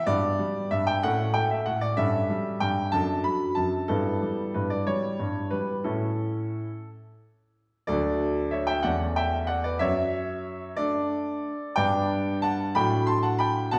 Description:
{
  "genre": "classical-period piano sonatina",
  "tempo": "62 BPM (dotted quarters)",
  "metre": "6/8",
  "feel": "rubato",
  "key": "D major",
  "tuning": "A4 = 440 Hz",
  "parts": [
    { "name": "clear concert grand piano", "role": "solo", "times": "0.0-13.8 s", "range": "D2 to C6", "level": "-27 LUFS", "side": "equal", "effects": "none" }
  ],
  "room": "wet recital hall reverb, RT60 1.3 s",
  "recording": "heard from further back in the room",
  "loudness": "-27 LUFS",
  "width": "mono",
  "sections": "0.0-7.9 A section; 7.9-13.8 B section",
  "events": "none",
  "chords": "0.1 G6; 1.0 A; 2.0 A7/G; 2.9 D/F#; 3.9 Em/G; 5.9 A; 7.9 D; 8.8 A/E; 9.8 D/F#; 11.8 G; 12.8 D/A"
}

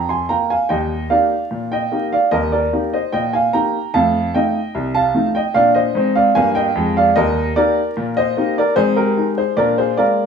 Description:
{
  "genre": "ragtime piano",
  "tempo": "74 BPM",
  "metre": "2/4",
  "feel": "straight",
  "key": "Eb major",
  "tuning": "A4 = 439 Hz",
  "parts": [
    { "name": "clear upright piano", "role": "solo", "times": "0.0-10.3 s", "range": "C2 to C6", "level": "-15 LUFS", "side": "right 1 dB", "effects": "none" }
  ],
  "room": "moderate studio reverb, RT60 0.8 s",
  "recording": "band playing live in one room, vinyl crackle, small room ambience",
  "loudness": "-15 LUFS",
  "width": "side -6 dB against mid",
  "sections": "0.0-10.3 A section",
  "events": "none",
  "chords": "0.0 Bb5; 0.7 Eb; 3.9 F7; 5.6 Bb7; 7.2 Eb; 8.8 Ab; 9.6 Bb7"
}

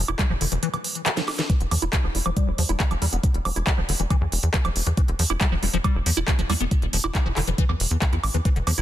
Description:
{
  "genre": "psychedelic trance",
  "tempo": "138 BPM",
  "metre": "4/4",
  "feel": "straight",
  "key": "E phrygian",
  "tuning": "A4 = 440 Hz",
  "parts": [
    { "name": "tight sequencer bass", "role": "bass", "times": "0.0-8.8 s", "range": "E1 to E2", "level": "-24 LUFS", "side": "equal", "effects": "none" },
    { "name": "liquid acid bass", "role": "riff", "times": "0.1-8.8 s", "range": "D3 to E4", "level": "-29 LUFS", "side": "moving between left 7 dB and right 3 dB", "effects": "phaser, auto-pan, sidechain pumping, tape echo" },
    { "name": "techno drum kit", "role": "drums", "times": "0.1-8.8 s", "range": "handclaps, hi-hat, snare drum, woodblock", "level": "-26 LUFS", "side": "right 1 dB", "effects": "overdrive, small room ambience" },
    { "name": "electronic kick drum", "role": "drums", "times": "0.2-8.5 s", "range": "none", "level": "-22 LUFS", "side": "equal", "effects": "small room ambience" }
  ],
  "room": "little or no reverb",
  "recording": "dense, heavily limited modern master",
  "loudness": "-20 LUFS",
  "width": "side -12 dB against mid",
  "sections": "0.0-8.8 A section",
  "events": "drum fill 1.2-1.5",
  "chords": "0.0 E5"
}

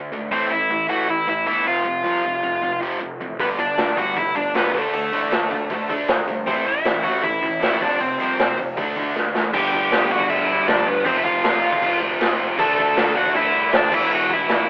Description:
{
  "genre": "punk rock",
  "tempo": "156 BPM",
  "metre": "4/4",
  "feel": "straight",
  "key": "G major",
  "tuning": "A4 = 438 Hz",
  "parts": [
    { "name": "sludgy distorted guitar", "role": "riff", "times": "0.0-14.7 s", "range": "E2 to D4", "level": "-31 LUFS", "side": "left 1 dB", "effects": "overdrive" },
    { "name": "tight distorted guitar", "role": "riff", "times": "0.0-14.7 s", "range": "E2 to D4", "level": "-26 LUFS", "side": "right 1 dB", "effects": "distortion" },
    { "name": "fuzz picked electric bass", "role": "bass", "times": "0.0-14.7 s", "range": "E1 to G2", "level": "-31 LUFS", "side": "equal", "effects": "overdrive" },
    { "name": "high-gain lead guitar", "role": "melody", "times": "0.3-14.7 s", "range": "A3 to A5", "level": "-20 LUFS", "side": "equal", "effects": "distortion" },
    { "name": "raw garage drum kit", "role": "drums", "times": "3.4-14.6 s", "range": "crash cymbal, hi-hat, kick drum, snare drum", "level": "-21 LUFS", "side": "equal", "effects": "none" }
  ],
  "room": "light reverb",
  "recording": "band playing live in one room, telephone sound",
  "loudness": "-17 LUFS",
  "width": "side -28 dB against mid",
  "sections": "0.0-9.5 A section; 9.5-14.7 B section",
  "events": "drum fill 9.2-9.5",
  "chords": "0.3 Am; 1.7 F5; 3.4 G; 4.7 D5; 6.5 Am; 7.8 F5; 8.8 D5; 9.5 G; 11.1 F5; 12.6 D; 13.9 E5"
}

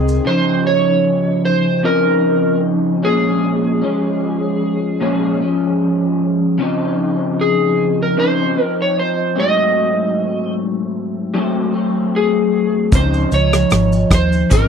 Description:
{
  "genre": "indie pop, bedroom pop",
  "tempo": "76 BPM",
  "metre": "4/4",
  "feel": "swing 55% on 16ths",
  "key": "unclear",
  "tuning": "A4 = 441 Hz",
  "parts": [
    { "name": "electric slide guitar", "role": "melody", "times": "0.0-14.7 s", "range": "Ab4 to Eb5", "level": "-18 LUFS", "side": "equal", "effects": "lush chorus, slapback echo" },
    { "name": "electric guitar through a small old amp", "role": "accompaniment", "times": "0.0-14.7 s", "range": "Ab2 to Eb4", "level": "-16 LUFS", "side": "left 1 dB", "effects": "ensemble chorus, warbly pitch drift" },
    { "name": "vintage muted fingered electric bass", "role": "bass", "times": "0.0-0.2, 12.9-14.7 s", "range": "Ab1 to Eb2", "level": "-16 LUFS", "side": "equal", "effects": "none" },
    { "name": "unplugged drum kit", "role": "drums", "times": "0.1-0.2, 12.9-14.7 s", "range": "hi-hat, kick drum, rim click, shaker", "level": "-15 LUFS", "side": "equal", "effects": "none" }
  ],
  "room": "little or no reverb",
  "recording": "dry, close 1970s-style studio recording",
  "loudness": "-14 LUFS",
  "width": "side -6 dB against mid",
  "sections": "0.3-14.7 A section",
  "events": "none",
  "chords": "0.3 Dbmaj9; 3.0 Bbm7; 6.6 Dbmaj9; 9.4 Ab7b9; 12.9 Dbmaj9"
}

